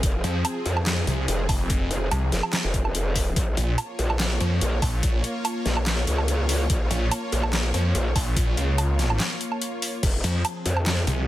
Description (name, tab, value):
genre	heavy wobble dubstep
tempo	144 BPM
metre	4/4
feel	half-time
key	unclear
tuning	A4 = 440 Hz
part	supersaw pad	sustained chords	0.0-11.3 s	F3 to Db5	-31 LUFS	equal	sidechain pumping
part	growl bass	bass	0.0-11.1 s	F1 to F2	-24 LUFS	equal	chorus, overdrive
part	dubstep drum kit	drums	0.0-11.2 s	crash cymbal, handclaps, hi-hat, snare drum, woodblock	-27 LUFS	equal	overdrive, studio ambience
part	electronic kick drum	drums	0.0-10.1 s	none	-24 LUFS	equal	overdrive, studio ambience
part	snarling distorted saw bass	bass	0.2-11.3 s	F1 to F2	-23 LUFS	equal	distortion, overdrive
room	light reverb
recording	dense, heavily limited modern master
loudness	-22 LUFS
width	side -14 dB against mid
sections	0.0-11.3 A section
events	break 9.2-10.0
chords	0.0 Fm; 3.4 Bbm; 10.0 Fm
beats	| 0.03 0.45 0.86 1.28 | 1.70 2.11 2.53 2.95 | 3.36 3.78 4.20 4.61 | 5.03 5.45 5.86 6.28 | 6.70 7.11 7.53 7.95 | 8.36 8.78 9.20 9.61 | 10.03 10.45 10.86